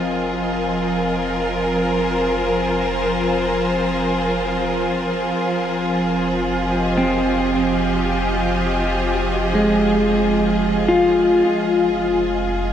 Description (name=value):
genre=ambient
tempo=free time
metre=none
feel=none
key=F minor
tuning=A4 = 443 Hz
part: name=bright studio string section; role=sustained chords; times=0.0-12.7 s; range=F3 to Eb5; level=-20 LUFS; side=equal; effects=none
part: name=warm sub bass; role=bass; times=0.0-12.7 s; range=F1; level=-30 LUFS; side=equal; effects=none
part: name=bowed-like drone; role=drone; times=0.0-12.7 s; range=F3 to C4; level=-26 LUFS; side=right 1 dB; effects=built-in reverb
part: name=clean electric guitar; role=arpeggios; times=7.0-12.7 s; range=Ab3 to F4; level=-18 LUFS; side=equal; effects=diffuse ambient delay
room=wet shimmer reverb, RT60 6.5 s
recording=none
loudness=-17 LUFS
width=side -9 dB against mid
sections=0.0-12.7 A section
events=fade-in on sub bass 0.0-12.7; fade-out on synth drone 0.0-12.7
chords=0.0 Abadd9/F; 5.4 Fm9; 11.5 Ab/F